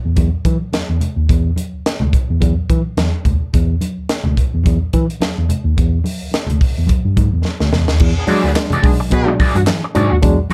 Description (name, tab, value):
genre	funk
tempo	107 BPM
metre	4/4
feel	swing 56% on 16ths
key	E mixolydian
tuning	A4 = 438 Hz
part	tine electric piano	bass	0.0-10.3 s	B1 to E3	-19 LUFS	equal	none
part	crisp fusion drum kit	drums	0.2-10.5 s	crash cymbal, handclaps, hi-hat, kick drum, snare drum	-20 LUFS	equal	none
part	congas	percussion	0.2-10.5 s	none	-26 LUFS	equal	none
part	barky reed electric piano	stabs	8.0-10.5 s	E3 to D4	-22 LUFS	equal	overdrive, fast tremolo
part	warm horn section	second line	8.2-9.3 s	B3 to B4	-27 LUFS	equal	none
part	crunchy overdriven guitar	accompaniment	8.3-10.5 s	F#4 to D5	-23 LUFS	equal	wah
room	light reverb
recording	dark, warm production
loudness	-16 LUFS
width	mono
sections	0.0-8.0 A section; 8.0-10.5 B section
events	drum fill 7.5-8.0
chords	0.0 N.C.; 8.0 E9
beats	0.17 0.73 | 1.29 1.85 2.41 2.97 | 3.53 4.09 4.66 5.21 | 5.77 6.33 6.89 7.45 | 8.01 8.56 9.12 9.68 | 10.23